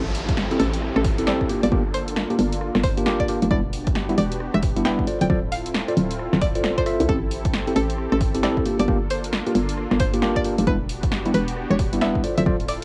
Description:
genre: UK garage, two-step garage.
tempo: 134 BPM.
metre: 4/4.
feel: swing 62% on 16ths.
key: A phrygian.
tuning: A4 = 441 Hz.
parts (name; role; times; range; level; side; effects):
string-like resonator pluck; melody; 0.0-12.8 s; A4 to G5; -31 LUFS; equal; chorus, cassette tape.
warm analog pad; sustained chords; 0.0-12.8 s; Bb3 to A4; -34 LUFS; equal; chorus, sidechain pumping, cassette tape.
hollow knocking FM bass; bass; 0.0-12.8 s; D1 to C2; -26 LUFS; equal; tube saturation, sidechain pumping.
downlifter; sound effects; 0.0-3.5 s; none; -36 LUFS; equal; none.
house drum kit; drums; 0.1-12.8 s; hi-hat, rim click, snare drum; -32 LUFS; equal; studio reverb, cassette tape.
electronic kick drum; drums; 0.3-12.6 s; none; -28 LUFS; equal; studio reverb, cassette tape.
mellow tine electric piano; stabs; 0.5-12.6 s; G3 to E5; -27 LUFS; equal; vintage 12-bit sampler grit, cassette tape.
room: digital ambience.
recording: home recording on cassette.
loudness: -22 LUFS.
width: mono.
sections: 0.0-12.8 A section.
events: none.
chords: 0.0 Am7; 1.5 Gm7; 3.5 Em7; 5.1 Dm7; 7.1 Am7; 8.7 Gm7; 10.7 Em7; 12.2 Dm7.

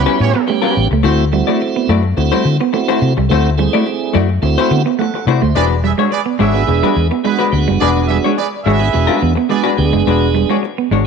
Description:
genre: funk.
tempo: 106 BPM.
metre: 4/4.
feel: straight.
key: E mixolydian.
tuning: A4 = 440 Hz.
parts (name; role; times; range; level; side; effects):
clear horn section; second line; 0.0-0.4, 5.5-9.7 s; C#4 to E5; -20 LUFS; right 7 dB; none.
tonewheel organ; stabs; 0.0-11.1 s; G3 to F#5; -18 LUFS; right 8 dB; overdrive, slow rotary speaker.
vintage muted fingered electric bass; bass; 0.0-11.1 s; E1 to D3; -15 LUFS; left 2 dB; none.
vintage hollow-body jazz guitar; accompaniment; 0.1-11.1 s; G3 to D5; -18 LUFS; left 13 dB; none.
clean electric guitar; riff; 0.2-11.0 s; G3 to B3; -20 LUFS; right 9 dB; none.
room: moderate echo chamber reverb, RT60 1.7 s.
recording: 1960s-style stereo with parts hard left and right.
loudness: -12 LUFS.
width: side -6 dB against mid.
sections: 0.0-5.6 A section; 5.6-11.1 B section.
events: none.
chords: 0.0 A13; 1.0 D9; 5.6 E9.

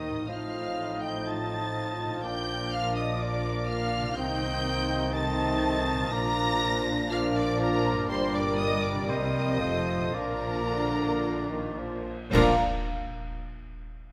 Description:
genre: classical, dramatic, fast romantic movement for symphony orchestra.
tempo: 122 BPM.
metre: 4/4.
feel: rubato.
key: Bb major.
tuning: A4 = 440 Hz.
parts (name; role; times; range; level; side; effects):
warm symphonic violin section; melody; 0.0-12.6 s; Bb5 to Bb6; -37 LUFS; equal; none.
mellow clarinet; second line; 0.0-12.5 s; Eb4 to C5; -40 LUFS; equal; none.
mellow hollow flute section; second line; 0.0-12.6 s; Bb4 to Bb5; -38 LUFS; equal; none.
warm oboe; second line; 0.0-12.5 s; C5 to Eb5; -40 LUFS; equal; none.
warm symphonic violin section; second line; 0.0-12.6 s; Bb4 to Bb5; -42 LUFS; equal; none.
warm bassoon; accompaniment; 0.0-12.5 s; D3 to G3; -39 LUFS; equal; none.
warm studio viola section; accompaniment; 0.0-12.6 s; C4 to Bb4; -39 LUFS; equal; none.
dark trombone section; sustained chords; 0.0-12.5 s; Bb2 to Bb3; -41 LUFS; equal; none.
mellow French horn section; sustained chords; 0.0-12.5 s; A3 to Eb4; -38 LUFS; equal; none.
concert harp; arpeggios; 0.0-13.3 s; G2 to F5; -40 LUFS; equal; none.
rich symphonic cello section; bass; 0.0-12.6 s; F2 to Eb3; -38 LUFS; equal; none.
rich symphonic double bass section; bass; 0.0-12.6 s; F1 to Eb2; -38 LUFS; equal; none.
cymbal swell, clash cymbals and concert bass drum; percussion; 8.1-13.3 s; none; -39 LUFS; equal; none.
room: moderate concert hall reverb, RT60 2.1 s.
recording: close, detailed microphones.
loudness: -28 LUFS.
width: mono.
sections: 0.0-12.3 A section; 12.3-14.1 B section.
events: band accent 12.3-12.8.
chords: 0.3 F7/A; 2.2 Bb; 4.2 Adim/C; 6.1 Bb; 8.1 Gm; 9.1 Cm7; 9.6 F7; 10.1 Bb.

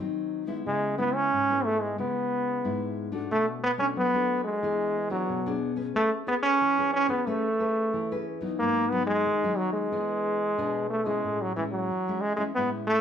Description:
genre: samba and choro.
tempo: 91 BPM.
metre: 4/4.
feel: straight.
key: unclear.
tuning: A4 = 440 Hz.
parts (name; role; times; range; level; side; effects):
nylon-string guitar; accompaniment; 0.0-13.0 s; G#2 to B4; -32 LUFS; left 4 dB; none.
brilliant trombone; melody; 0.7-13.0 s; E3 to C#4; -25 LUFS; right 1 dB; none.
room: moderate studio reverb, RT60 0.7 s.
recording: band playing live in one room.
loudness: -25 LUFS.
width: side -8 dB against mid.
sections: 0.0-11.2 A section; 11.2-13.0 B section.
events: none.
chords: 0.0 G#7; 0.7 C#m7; 3.3 Bm7; 4.6 E7; 6.0 Amaj9; 8.6 G#m7; 9.9 E7; 11.2 Amaj7.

